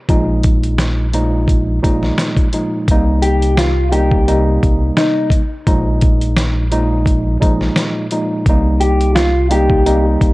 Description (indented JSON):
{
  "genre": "hip hop, boom-bap hip-hop",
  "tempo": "86 BPM",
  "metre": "4/4",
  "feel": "swing 55% on 16ths",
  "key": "C minor",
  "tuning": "A4 = 440 Hz",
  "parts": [
    { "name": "tine electric piano", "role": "accompaniment", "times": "0.1-10.3 s", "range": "Bb2 to Eb4", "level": "-18 LUFS", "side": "equal", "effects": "overdrive, fast stereo tremolo, cassette tape, high-pass filter, low-pass filter" },
    { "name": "sub bass with octave", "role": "bass", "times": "0.1-10.3 s", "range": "Bb1 to C2", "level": "-16 LUFS", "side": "equal", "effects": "none" },
    { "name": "dusty soul sampler-style drum kit", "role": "drums", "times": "0.1-10.3 s", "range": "hi-hat, kick drum, snare drum", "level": "-16 LUFS", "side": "equal", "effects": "cassette tape" },
    { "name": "mellow electric guitar", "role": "melody", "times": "3.2-10.0 s", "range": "Eb4 to G4", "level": "-17 LUFS", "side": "left 1 dB", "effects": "high-pass filter, low-pass filter, cassette tape, tape echo" }
  ],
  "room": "light reverb",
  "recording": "home recording on cassette",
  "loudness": "-12 LUFS",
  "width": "side -20 dB against mid",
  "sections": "0.0-2.9 A section; 2.9-10.3 B section",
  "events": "none",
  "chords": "0.1 Bb7sus4; 2.9 Cm7; 5.7 Bb7sus4; 8.5 Cm7"
}